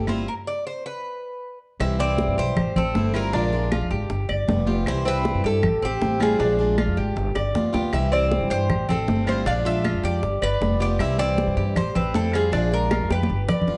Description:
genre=latin, Cuban son and guajira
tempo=157 BPM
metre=4/4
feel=straight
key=C major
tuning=A4 = 441 Hz
part: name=Cuban tres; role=melody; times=0.0-13.8 s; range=G4 to F5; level=-28 LUFS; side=equal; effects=none
part: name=picked plugged-in swing-style acoustic guitar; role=accompaniment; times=0.0-13.8 s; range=C3 to F4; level=-31 LUFS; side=equal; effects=none
part: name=Cuban tres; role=arpeggios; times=0.0-13.8 s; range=C4 to D5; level=-31 LUFS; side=equal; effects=none
part: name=upright bass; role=bass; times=0.0-13.8 s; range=F1 to G2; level=-27 LUFS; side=equal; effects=none
part: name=bongos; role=percussion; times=0.1-13.8 s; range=none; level=-35 LUFS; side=equal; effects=none
part: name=claves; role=percussion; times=0.1-13.7 s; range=none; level=-39 LUFS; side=equal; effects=none
part: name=congas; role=percussion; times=0.1-13.7 s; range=none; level=-29 LUFS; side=equal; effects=none
room=moderate large studio reverb, RT60 1.2 s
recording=dark, warm production, nothing above 10.8 kHz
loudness=-23 LUFS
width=mono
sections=0.0-1.8 A section; 1.8-13.8 B section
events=stop 0.3-1.8; drum fill 7.4-7.9, 12.9-13.8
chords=0.3 N.C.; 1.8 C; 2.6 Am7; 3.3 Bb7; 4.1 G7; 4.9 C; 5.6 Am7; 6.4 Bb7; 7.2 G7; 7.9 C; 8.7 Am7; 9.5 Bb7; 10.2 G7; 11.0 C; 11.8 Am7; 12.5 Bb7

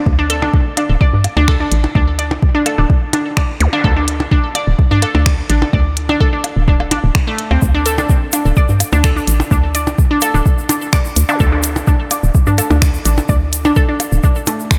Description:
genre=minimal techno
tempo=127 BPM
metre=4/4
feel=straight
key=unclear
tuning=A4 = 442 Hz
part: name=hollow knocking FM bass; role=bass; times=0.1-14.2 s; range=D1 to G2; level=-17 LUFS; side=equal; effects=sidechain pumping
part: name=electronic kick drum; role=drums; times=0.1-14.8 s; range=none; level=-16 LUFS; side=equal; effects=none
part: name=resonant blip pluck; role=riff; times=0.2-14.5 s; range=A3 to D5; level=-21 LUFS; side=equal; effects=chorus, sidechain pumping, delay
part: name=minimal click drum kit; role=drums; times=0.3-14.8 s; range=finger snaps, hi-hat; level=-24 LUFS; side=equal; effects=none
part: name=percussion blips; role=percussion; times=0.4-14.6 s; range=none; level=-26 LUFS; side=equal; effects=overdrive, analog delay
part: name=zap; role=sound effects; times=3.6-3.7, 11.3-11.4 s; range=none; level=-29 LUFS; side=equal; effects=none
part: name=egg shaker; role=percussion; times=7.6-14.8 s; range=none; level=-27 LUFS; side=equal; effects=none
room=light reverb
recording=none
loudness=-14 LUFS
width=mono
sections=0.0-14.8 A section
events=none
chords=0.0 D5

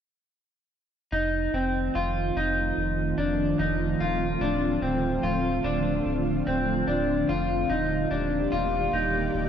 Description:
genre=dream pop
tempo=73 BPM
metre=4/4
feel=straight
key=F mixolydian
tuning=A4 = 440 Hz
part: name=ethereal airy pad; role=sustained chords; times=1.8-9.5 s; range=D3 to D5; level=-28 LUFS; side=right 1 dB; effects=ensemble chorus, built-in reverb
part: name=electric guitar at the edge of break-up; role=arpeggios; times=1.1-9.5 s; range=C4 to F4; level=-26 LUFS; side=left 1 dB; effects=lush chorus, ping-pong delay
part: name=warm sub bass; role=bass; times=1.1-9.5 s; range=D1 to F1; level=-32 LUFS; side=equal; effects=none
room=wet lush hall reverb, RT60 2.5 s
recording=worn, warbling old tape, cassette tape, warbly pitch drift, nothing above 11.0 kHz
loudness=-24 LUFS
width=side -8 dB against mid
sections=1.1-9.5 A section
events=none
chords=1.1 F7; 4.4 Dm7; 7.7 Ebmaj7

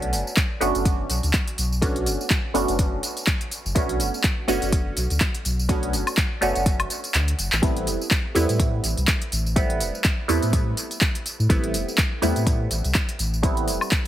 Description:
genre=deep house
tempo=124 BPM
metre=4/4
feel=swing 56% on 16ths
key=unclear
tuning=A4 = 439 Hz
part: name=filtered dub chord stab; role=stabs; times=0.0-14.1 s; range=G3 to F#4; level=-26 LUFS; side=right 2 dB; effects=phaser, sidechain pumping, dub echo
part: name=warm sub bass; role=bass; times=0.0-13.8 s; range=E1 to A2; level=-25 LUFS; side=equal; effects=sidechain pumping
part: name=deep house drum kit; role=drums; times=0.0-14.1 s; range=handclaps, hi-hat, tambourine, woodblock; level=-26 LUFS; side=equal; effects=studio reverb
part: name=electronic kick drum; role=drums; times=0.4-14.0 s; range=none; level=-22 LUFS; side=equal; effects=studio reverb
room=little or no reverb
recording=heavily compressed radio sound, multiband compression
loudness=-20 LUFS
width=side -12 dB against mid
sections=0.0-14.1 A section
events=kick drops out 7.1-7.6; drum fill 7.1-7.6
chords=0.0 Bm7; 7.6 Am7

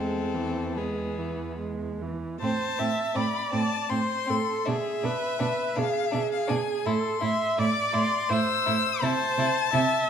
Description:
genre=classical, slow romantic movement for string quartet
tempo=82 BPM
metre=3/4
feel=uneven beats, rubato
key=A minor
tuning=A4 = 439 Hz
part: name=rich violin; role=melody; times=0.0-10.1 s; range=G#4 to E6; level=-29 LUFS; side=left 8 dB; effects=none
part: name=rich violin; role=second line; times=0.0-9.8 s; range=B3 to E4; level=-34 LUFS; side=left 3 dB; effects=none
part: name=rich viola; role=accompaniment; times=0.0-10.1 s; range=E3 to E5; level=-29 LUFS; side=right 3 dB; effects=none
part: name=rich cello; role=bass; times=0.0-9.8 s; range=E2 to C3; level=-30 LUFS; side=right 4 dB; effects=none
room=moderate recital hall reverb, RT60 1.6 s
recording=none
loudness=-24 LUFS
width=side -8 dB against mid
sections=0.0-2.4 A section; 2.4-10.1 B section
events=none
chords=0.0 E; 2.4 Am; 4.7 E/B; 6.9 Am

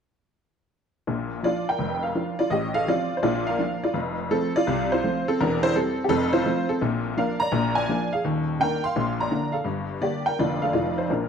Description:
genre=jazz, stride piano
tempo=168 BPM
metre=4/4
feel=swing 66% on 8ths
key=Bb major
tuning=A4 = 440 Hz
part: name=honky-tonk upright piano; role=solo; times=1.1-11.3 s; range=Eb1 to C6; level=-22 LUFS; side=equal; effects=none
room=moderate scoring stage reverb, RT60 1.5 s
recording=close, detailed microphones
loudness=-22 LUFS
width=side -7 dB against mid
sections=1.1-11.3 A section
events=none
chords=1.1 Bb; 2.5 F/A; 3.2 Bb; 3.9 F; 5.4 C/E; 6.1 F; 6.8 Bb; 7.5 Bb7; 8.2 Eb5; 8.9 Bb; 9.7 Gm; 10.4 Bb/F; 10.7 F7

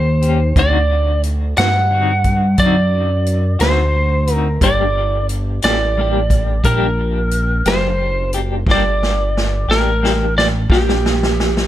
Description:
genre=slow blues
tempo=59 BPM (dotted quarters)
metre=12/8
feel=straight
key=G minor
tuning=A4 = 440 Hz
part: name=lightly driven lead guitar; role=melody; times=0.0-11.7 s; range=G4 to F#5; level=-18 LUFS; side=right 1 dB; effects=none
part: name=fat analog bass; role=bass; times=0.0-11.7 s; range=F#1 to G2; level=-17 LUFS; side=equal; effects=none
part: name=clean electric guitar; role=accompaniment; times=0.2-10.9 s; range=D3 to G4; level=-24 LUFS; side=left 4 dB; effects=tremolo, tape echo
part: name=swinging big-band drum kit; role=drums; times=0.2-11.7 s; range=hi-hat, kick drum, snare drum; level=-19 LUFS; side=equal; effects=none
room=little or no reverb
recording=echo-heavy mix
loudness=-13 LUFS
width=side -13 dB against mid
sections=0.0-11.7 A section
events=drum fill 8.7-11.7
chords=0.0 Eb7; 0.6 D7b9; 4.6 Gm

